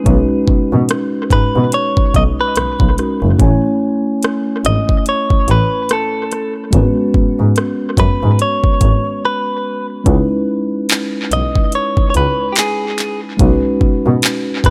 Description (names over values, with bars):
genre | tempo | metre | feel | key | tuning
contemporary R&B | 72 BPM | 4/4 | swing 58% on 16ths | unclear | A4 = 442 Hz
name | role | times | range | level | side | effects
mellow tine electric piano | accompaniment | 0.0-14.7 s | G#3 to G#5 | -21 LUFS | equal | none
muted double bass | bass | 0.1-14.7 s | F#1 to B2 | -18 LUFS | equal | none
trap drum kit | drums | 0.1-14.7 s | handclaps, hi-hat, kick drum, rim click | -17 LUFS | equal | overdrive, analog delay
direct-recorded clean electric guitar | melody | 1.3-14.7 s | G4 to D#5 | -20 LUFS | equal | analog delay
room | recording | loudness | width
little or no reverb | echo-heavy mix | -15 LUFS | mono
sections
0.0-14.7 A section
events
break 9.2-10.1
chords
0.1 B69; 3.4 Amaj7; 6.7 G#m7; 10.1 C#m9; 13.4 B69